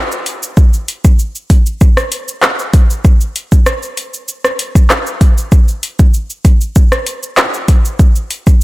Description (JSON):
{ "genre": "dancehall", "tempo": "97 BPM", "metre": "4/4", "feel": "straight", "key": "none", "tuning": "none", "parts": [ { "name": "afro-pop drum kit", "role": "drums", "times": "0.1-8.6 s", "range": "handclaps, hi-hat, kick drum, rim click, shaker", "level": "-9 LUFS", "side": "equal", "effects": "none" } ], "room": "little or no reverb", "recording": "none", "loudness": "-9 LUFS", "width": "side -20 dB against mid", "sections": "0.0-8.6 A section", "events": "none", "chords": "none" }